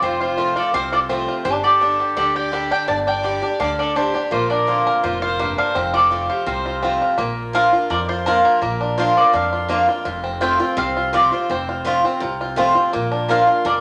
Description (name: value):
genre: bluegrass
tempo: 167 BPM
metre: 4/4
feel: straight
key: unclear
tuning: A4 = 441 Hz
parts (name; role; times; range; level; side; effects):
- bluegrass banjo; melody; 0.0-13.8 s; Bb3 to Bb4; -26 LUFS; equal; none
- mandolin; melody; 0.0-13.8 s; Bb4 to A5; -23 LUFS; equal; none
- clear fiddle; second line; 0.0-7.0 s; F4 to D5; -30 LUFS; equal; none
- picked swing-style acoustic guitar; accompaniment; 0.0-13.8 s; F2 to G4; -23 LUFS; equal; none
- upright bass; bass; 0.0-13.8 s; F1 to F2; -33 LUFS; equal; none
room: wet large studio reverb, RT60 1.0 s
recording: none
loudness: -19 LUFS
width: mono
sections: 0.0-7.2 A section; 7.2-13.8 B section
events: none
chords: 0.0 F; 1.5 Gsus2; 4.3 Bbadd9; 5.8 F; 7.2 Bb; 10.1 F; 12.9 Bb